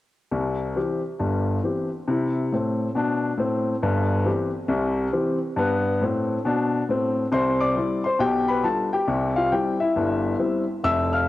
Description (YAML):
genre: jazz, stride piano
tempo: 137 BPM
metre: 4/4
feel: swing 63% on 8ths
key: C major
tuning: A4 = 440 Hz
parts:
  - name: clear grand piano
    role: solo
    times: 0.3-11.3 s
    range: F1 to F6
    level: -21 LUFS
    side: left 2 dB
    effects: none
room: moderate lush hall reverb, RT60 2.4 s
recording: home recording on cassette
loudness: -21 LUFS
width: side -15 dB against mid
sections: 0.3-7.3 A section; 7.3-11.3 B section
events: none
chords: 0.3 C; 3.8 C/G; 5.6 G; 7.3 C; 8.2 G7/B; 9.1 C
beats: | 0.32 0.76 1.20 1.63 | 2.07 2.51 2.95 3.38 | 3.82 4.26 4.70 5.14 | 5.57 6.01 6.45 6.89 | 7.32 7.76 8.20 8.64 | 9.07 9.51 9.95 10.38 | 10.82 11.26